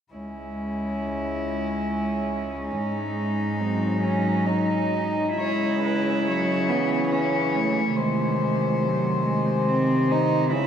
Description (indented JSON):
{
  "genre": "classical, lyrical piece for cello ensemble",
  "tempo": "69 BPM",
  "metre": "3/4",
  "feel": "uneven beats, rubato",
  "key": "C# minor",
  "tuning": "A4 = 439 Hz",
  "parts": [
    { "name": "rich cello", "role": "melody", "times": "0.1-10.7 s", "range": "D#4 to C#5", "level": "-30 LUFS", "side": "left 6 dB", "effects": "none" },
    { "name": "dark cello", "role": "second line", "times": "0.1-10.7 s", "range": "F#3 to E4", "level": "-26 LUFS", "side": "right 3 dB", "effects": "none" },
    { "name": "warm cello", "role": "accompaniment", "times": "0.1-10.7 s", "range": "B#2 to G#3", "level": "-28 LUFS", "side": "left 2 dB", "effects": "none" },
    { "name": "warm cello", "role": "bass", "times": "0.1-10.7 s", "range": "C#2 to D#3", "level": "-28 LUFS", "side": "right 2 dB", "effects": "none" }
  ],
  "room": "wet huge ambient reverb, RT60 8.6 s",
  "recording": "in a vast, echoing space",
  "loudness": "-22 LUFS",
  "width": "side -8 dB against mid",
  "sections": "0.1-5.4 A section; 5.4-10.7 B section",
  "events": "none",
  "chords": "0.1 C#m; 2.7 G#7(no3); 5.4 C#m; 8.0 G#/B#"
}